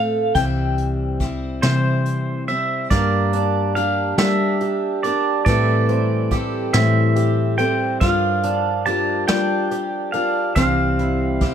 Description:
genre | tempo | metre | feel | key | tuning
acoustic folk duo or small band | 47 BPM (dotted quarters) | 6/8 | straight | G dorian | A4 = 440 Hz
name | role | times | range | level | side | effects
clean electric guitar | melody | 0.0-2.4 s | F5 to G5 | -23 LUFS | left 3 dB | tremolo, plate reverb
picked steel-string acoustic guitar | accompaniment | 0.0-11.5 s | A2 to C5 | -23 LUFS | left 2 dB | none
hollow-body short-scale fingered electric bass | bass | 0.0-11.5 s | C2 to G3 | -22 LUFS | left 1 dB | none
vintage brush drum kit | drums | 0.3-11.5 s | hi-hat, kick drum, snare drum | -23 LUFS | equal | none
pedal steel guitar | second line | 1.6-11.5 s | C5 to A5 | -23 LUFS | right 3 dB | none
fingerpicked twelve-string acoustic guitar | arpeggios | 2.9-11.5 s | E3 to G4 | -24 LUFS | right 4 dB | none
room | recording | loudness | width
moderate small room reverb, RT60 0.5 s | none | -17 LUFS | side -8 dB against mid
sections
0.0-2.9 A section; 2.9-11.5 A section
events
pedal steel guitar solo 2.9-11.5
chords
0.4 C; 2.9 Gm; 5.5 Am7; 8.0 Gm7; 10.6 C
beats
| 0.35 1.63 | 2.91 4.19 | 5.46 6.74 | 8.02 9.29 | 10.57

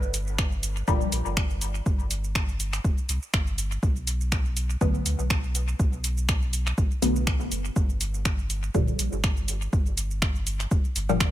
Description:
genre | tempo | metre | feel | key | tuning
dub techno | 122 BPM | 4/4 | swing 55% on 16ths | unclear | A4 = 440 Hz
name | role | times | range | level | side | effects
pure sine sub bass | bass | 0.0-11.3 s | F1 to D2 | -29 LUFS | equal | tube saturation, sidechain pumping
deep house drum kit | drums | 0.0-11.3 s | finger snaps, hi-hat, shaker | -30 LUFS | right 1 dB | overdrive, dub echo
electronic kick drum | drums | 0.4-11.3 s | none | -25 LUFS | equal | overdrive
filtered dub chord stab | stabs | 0.9-11.3 s | Bb2 to B3 | -29 LUFS | left 1 dB | phaser, cassette tape, sidechain pumping, dub echo
room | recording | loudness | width
little or no reverb | none | -24 LUFS | side -13 dB against mid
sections
0.0-3.8 A section; 3.8-11.3 A section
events
none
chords
0.0 Gm7; 3.8 Bm7; 7.8 Gm7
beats
0.39 0.88 1.37 | 1.86 2.35 2.84 3.34 | 3.83 4.32 4.81 5.30 | 5.79 6.29 6.78 7.27 | 7.76 8.25 8.75 9.24 | 9.73 10.22 10.71 11.21

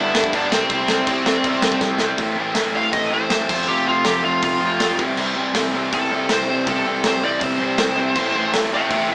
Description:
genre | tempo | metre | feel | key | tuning
punk rock | 161 BPM | 4/4 | straight | C major | A4 = 440 Hz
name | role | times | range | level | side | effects
high-gain lead guitar | melody | 0.0-9.1 s | C4 to G5 | -24 LUFS | equal | distortion
overdriven electric guitar | riff | 0.0-9.1 s | G2 to F4 | -25 LUFS | equal | none
sludgy distorted guitar | riff | 0.0-9.1 s | F2 to C4 | -27 LUFS | equal | overdrive
modern bright picked electric bass | bass | 0.0-9.1 s | F1 to C3 | -35 LUFS | equal | none
big rock drum kit | drums | 0.1-9.0 s | crash cymbal, hi-hat, kick drum, snare drum | -25 LUFS | equal | none
room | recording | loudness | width
moderate stone room reverb, RT60 1.0 s | band playing live in one room, small speaker sound | -19 LUFS | mono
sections
0.0-2.2 A section; 2.2-9.1 B section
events
drum fill 1.8-2.2; half time 2.2-9.1; lead electric guitar solo 2.2-9.1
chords
0.0 G; 0.5 C; 2.2 Am; 3.5 F; 5.0 C; 8.2 Am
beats
0.34 | 0.71 1.08 1.45 1.82 | 2.19 2.56 2.94 3.31 | 3.68 4.06 4.43 4.80 | 5.18 5.55 5.92 6.30 | 6.67 7.04 7.42 7.79 | 8.17 8.54 8.91

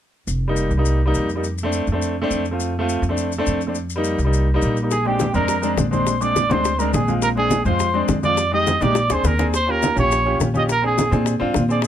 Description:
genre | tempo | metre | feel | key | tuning
Afro-Cuban jazz | 208 BPM | 4/4 | straight | Bb mixolydian from 4.9 s | A4 = 442 Hz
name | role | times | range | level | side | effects
upright bass | bass | 0.3-11.9 s | F1 to Bb2 | -22 LUFS | equal | none
maracas | percussion | 0.3-11.9 s | none | -33 LUFS | left 8 dB | none
warm concert grand piano | accompaniment | 0.5-11.9 s | G3 to Ab4 | -22 LUFS | equal | none
warm trumpet | melody | 4.9-11.8 s | G4 to Eb5 | -21 LUFS | right 2 dB | none
mellow concert flute | second line | 4.9-11.8 s | G5 to Eb6 | -26 LUFS | equal | none
bongos | percussion | 4.9-11.9 s | none | -27 LUFS | left 7 dB | none
congas | percussion | 4.9-11.7 s | none | -26 LUFS | left 1 dB | none
room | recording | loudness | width
little or no reverb | close, detailed microphones | -17 LUFS | side -10 dB against mid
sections
0.3-4.9 A section; 4.9-11.9 B section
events
drum fill 9.0-9.5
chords
0.3 F7sus4; 1.4 F6; 3.8 F7sus4; 4.9 Bb7; 8.4 Fm7; 9.0 Bb7; 9.5 Eb7; 10.7 Bb7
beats
| 0.28 0.57 0.86 1.15 | 1.44 1.73 2.02 2.31 | 2.60 2.89 3.17 3.46 | 3.75 4.04 4.33 4.62 | 4.91 5.20 5.49 5.78 | 6.07 6.36 6.65 6.94 | 7.22 7.51 7.80 8.09 | 8.38 8.67 8.96 9.25 | 9.54 9.82 10.11 10.40 | 10.69 10.98 11.27 11.56 | 11.85

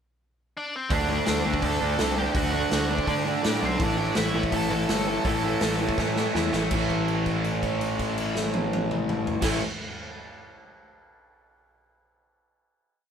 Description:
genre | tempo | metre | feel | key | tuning
punk rock | 165 BPM | 4/4 | straight | unclear | A4 = 439 Hz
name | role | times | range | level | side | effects
overdriven electric guitar | melody | 0.6-6.3 s | C4 to A5 | -31 LUFS | left 1 dB | none
overdriven electric guitar | riff | 0.9-9.6 s | A2 to D4 | -30 LUFS | left 6 dB | none
raw garage guitar | riff | 0.9-9.6 s | A2 to D4 | -28 LUFS | right 6 dB | overdrive
fuzz picked electric bass | bass | 0.9-9.6 s | G1 to D3 | -30 LUFS | equal | overdrive
raw garage drum kit | drums | 0.9-9.5 s | crash cymbal, hi-hat, kick drum, snare drum, toms | -29 LUFS | equal | none
room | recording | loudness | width
light reverb | band playing live in one room, faint mains hum | -23 LUFS | side -8 dB against mid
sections
0.0-0.9 pickup bar; 0.9-6.7 verse; 6.7-9.6 final chord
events
drum fill 6.0-6.7; held note 6.7-9.4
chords
0.0 Csus2; 0.9 D; 3.8 A5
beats
0.19 0.55 | 0.91 1.27 1.63 1.99 | 2.35 2.72 3.08 3.44 | 3.80 4.16 4.53 4.89 | 5.26 5.62 5.99 6.35 | 6.72 7.09 7.45 7.82 | 8.19 8.55 8.92 9.28

